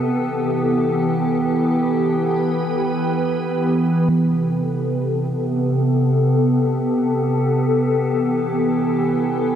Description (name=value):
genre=hip hop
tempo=free time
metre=none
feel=none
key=A minor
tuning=A4 = 440 Hz
part: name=glassy FM pad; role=solo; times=0.0-9.6 s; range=C3 to B4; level=-17 LUFS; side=equal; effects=ensemble chorus, built-in reverb, low-pass filter
room=wet huge ambient reverb, RT60 6.3 s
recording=none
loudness=-17 LUFS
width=side -9 dB against mid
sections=0.0-4.1 A section; 4.1-9.6 B section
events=filter sweep on ambient pad 4.1-9.6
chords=0.1 G69; 4.1 Am9; 8.1 G69